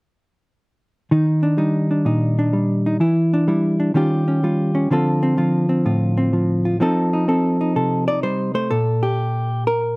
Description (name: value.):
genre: solo jazz.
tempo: 126 BPM.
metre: 4/4.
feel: swing 67% on 8ths.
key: unclear.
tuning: A4 = 440 Hz.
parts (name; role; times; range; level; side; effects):
hollow-body jazz guitar; solo; 1.1-10.0 s; A2 to D5; -16 LUFS; equal; none.
room: light reverb.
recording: recorded outdoors, with no room sound.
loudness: -16 LUFS.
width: side -28 dB against mid.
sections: 1.1-8.7 A section; 8.7-10.0 B section.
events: none.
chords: 1.1 Ebmaj7; 3.0 Em7; 4.0 Eb9; 4.9 Dm7; 6.8 F7; 8.7 Bb5.